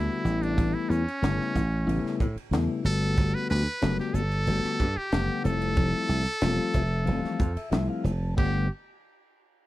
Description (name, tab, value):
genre	electric jazz fusion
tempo	92 BPM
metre	4/4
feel	straight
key	G lydian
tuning	A4 = 439 Hz
part	trumpet with metal mute	melody	0.0-8.7 s	C#4 to B4	-31 LUFS	equal	none
part	mellow tonewheel organ	accompaniment	0.0-8.7 s	C#3 to A5	-30 LUFS	left 4 dB	slow rotary speaker
part	dry thumbed slap bass	bass	0.0-8.7 s	E1 to A2	-26 LUFS	right 1 dB	none
part	crisp fusion drum kit	drums	0.3-8.5 s	crash cymbal, hi-hat, kick drum, ride cymbal, snare drum	-31 LUFS	equal	none
room	little or no reverb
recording	none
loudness	-24 LUFS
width	side -16 dB against mid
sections	0.0-8.4 A section; 8.4-9.7 B section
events	tonewheel organ fill 6.4-8.4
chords	0.3 A7; 2.9 Gmaj9; 5.5 Fmaj7; 8.4 Gmaj9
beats	| 0.58 1.23 1.88 2.53 | 3.18 3.83 4.48 5.13 | 5.78 6.43 7.08 7.73 | 8.38